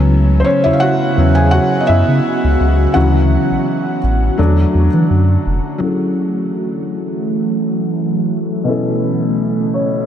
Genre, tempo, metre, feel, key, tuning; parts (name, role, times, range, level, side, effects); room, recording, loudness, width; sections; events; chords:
contemporary R&B; 84 BPM; 4/4; swing 54% on 16ths; F# minor; A4 = 440 Hz
felt-muted upright piano; accompaniment; 0.0-10.1 s; B2 to G#5; -16 LUFS; left 2 dB; low-pass filter
ethereal airy pad; sustained chords; 0.0-10.1 s; C#3 to F#4; -19 LUFS; right 2 dB; ensemble chorus, built-in reverb, phaser, low-pass filter
warm sub bass; bass; 0.0-5.6 s; E#1 to E3; -13 LUFS; equal
moderate huge ambient reverb, RT60 8.0 s; dreamy mix soaked in reverb; -12 LUFS; side -10 dB against mid
0.0-5.8 A section; 5.8-10.1 B section
felt piano solo 0.0-5.8; filter sweep 5.8-10.1; felt piano fill 9.4-10.1
0.0 C#m11; 3.0 Dmaj7; 4.4 E9sus4; 5.8 F#m9; 8.7 B9sus4